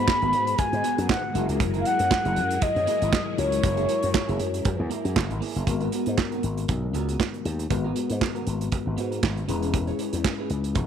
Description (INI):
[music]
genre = early-eighties boogie funk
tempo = 118 BPM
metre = 4/4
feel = swing 56% on 16ths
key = G# minor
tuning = A4 = 440 Hz
[part]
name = mellow horn-like synth lead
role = melody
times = 0.0-5.1 s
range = C#5 to B5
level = -25 LUFS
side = left 1 dB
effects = chorus
[part]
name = mellow tine electric piano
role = accompaniment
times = 0.0-10.9 s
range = G#3 to B4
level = -31 LUFS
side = left 12 dB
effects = medium stereo tremolo
[part]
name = phased string machine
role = sustained chords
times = 0.0-5.6 s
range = F#3 to A#4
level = -36 LUFS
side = equal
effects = ensemble chorus, phaser
[part]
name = slap bass with an envelope filter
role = bass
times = 0.0-10.9 s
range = E1 to G#2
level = -28 LUFS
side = left 1 dB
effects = none
[part]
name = electric guitar at the edge of break-up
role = riff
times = 0.1-10.8 s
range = A#3 to C#5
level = -34 LUFS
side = right 11 dB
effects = lush chorus
[part]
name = modern studio drum kit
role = drums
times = 0.1-10.9 s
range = handclaps, hi-hat, kick drum, snare drum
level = -27 LUFS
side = right 4 dB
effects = none
[sound]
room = light reverb, small room ambience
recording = 1960s-style stereo with parts hard left and right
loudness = -22 LUFS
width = side -8 dB against mid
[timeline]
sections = 0.0-5.7 A section; 5.7-10.9 B section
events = none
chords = 0.0 G#m9; 1.3 F#9; 5.7 G#m9; 9.5 E6